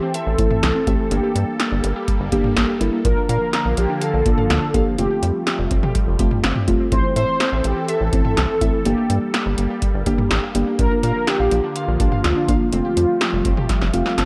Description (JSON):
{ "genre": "synth-pop", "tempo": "124 BPM", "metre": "4/4", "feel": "straight", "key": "F major", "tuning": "A4 = 442 Hz", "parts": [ { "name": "mellow synth brass", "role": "melody", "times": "0.0-14.1 s", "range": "F4 to C5", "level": "-25 LUFS", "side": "equal", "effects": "chorus, tape echo" }, { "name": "phased analog pad", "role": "sustained chords", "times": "0.0-14.3 s", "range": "D3 to A4", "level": "-31 LUFS", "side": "equal", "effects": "phaser, chorus" }, { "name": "warbly dusty pluck", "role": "arpeggios", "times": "0.0-14.3 s", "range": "E3 to F5", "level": "-31 LUFS", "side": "equal", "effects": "chorus, phaser, tape echo" }, { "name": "electro analog drum machine", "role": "drums", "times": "0.1-14.3 s", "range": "hi-hat, kick drum, snare drum, toms", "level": "-24 LUFS", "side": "equal", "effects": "none" }, { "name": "rubbery square bass", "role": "bass", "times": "0.3-14.3 s", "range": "E1 to Bb2", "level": "-24 LUFS", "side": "equal", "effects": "none" }, { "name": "muted felt-like synth keys", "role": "accompaniment", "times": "0.4-14.3 s", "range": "A3 to A5", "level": "-26 LUFS", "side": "equal", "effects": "chorus" } ], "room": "light reverb", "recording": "dark, warm production", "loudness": "-19 LUFS", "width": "mono", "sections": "0.0-14.3 A section", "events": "drum fill 13.7-14.3; synth keys fill 13.7-14.3", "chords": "0.0 Am; 1.1 Gmadd9; 3.0 Bb; 5.0 Fadd9; 6.9 Am; 8.9 Gmadd9; 10.8 Bb; 12.7 Fadd9" }